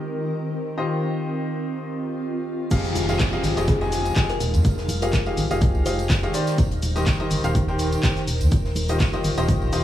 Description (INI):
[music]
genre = piano house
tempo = 124 BPM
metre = 4/4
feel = swing 55% on 16ths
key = F minor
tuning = A4 = 441 Hz
[part]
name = bright grand piano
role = riff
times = 0.0-9.8 s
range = Eb3 to Ab5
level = -26 LUFS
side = left 1 dB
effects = sidechain pumping
[part]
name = granular cloud pad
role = texture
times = 0.0-9.8 s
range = Eb3 to Bb5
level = -31 LUFS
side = right 1 dB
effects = built-in reverb, sidechain pumping
[part]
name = organ-like FM bass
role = bass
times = 2.7-9.8 s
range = Eb1 to F2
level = -24 LUFS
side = equal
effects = sidechain pumping
[part]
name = compact cocktail drum kit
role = drums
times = 2.7-9.8 s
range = hi-hat, shaker, snare drum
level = -39 LUFS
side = equal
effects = high-pass filter on hats, high-pass filter on snare, high-pass filter on perc, high-pass filter on room
[part]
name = electronic kick drum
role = drums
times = 2.7-9.6 s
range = none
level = -22 LUFS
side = equal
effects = none
[part]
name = punchy analog drum machine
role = drums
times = 2.7-9.8 s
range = cabasa, crash cymbal, handclaps, hi-hat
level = -30 LUFS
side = left 1 dB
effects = none
[part]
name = tambourine and congas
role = percussion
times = 2.7-9.7 s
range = none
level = -36 LUFS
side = right 1 dB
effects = none
[part]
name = downlifter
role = sound effects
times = 2.7-6.6 s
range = none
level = -32 LUFS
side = equal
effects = none
[part]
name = kalimba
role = melody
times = 3.7-6.4 s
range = Ab4 to C5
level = -33 LUFS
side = left 2 dB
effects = dub echo
[sound]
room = light reverb, small room ambience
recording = none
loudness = -20 LUFS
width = side -12 dB against mid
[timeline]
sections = 0.0-2.7 A section; 2.7-9.8 B section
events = drop 2.7-9.8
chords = 0.0 Eb69; 2.7 Fm9; 6.3 Cm7/Eb; 8.5 Eb69